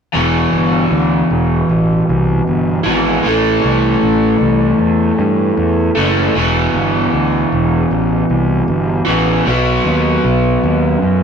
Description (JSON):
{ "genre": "rock", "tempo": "77 BPM", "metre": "4/4", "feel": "straight", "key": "E minor", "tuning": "A4 = 440 Hz", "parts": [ { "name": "overdriven electric guitar", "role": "riff", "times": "0.1-11.2 s", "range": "E2 to B3", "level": "-13 LUFS", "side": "equal", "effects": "none" }, { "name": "fuzz fingered electric bass", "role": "bass", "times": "0.1-11.2 s", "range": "E1 to G2", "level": "-16 LUFS", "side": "equal", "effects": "overdrive" } ], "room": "wet stone room reverb, RT60 1.1 s", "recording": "rough rehearsal-room recording", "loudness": "-12 LUFS", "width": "side -7 dB against mid", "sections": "0.1-11.2 A section", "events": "none", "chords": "0.1 Em; 3.2 Am; 6.4 Em; 9.5 B" }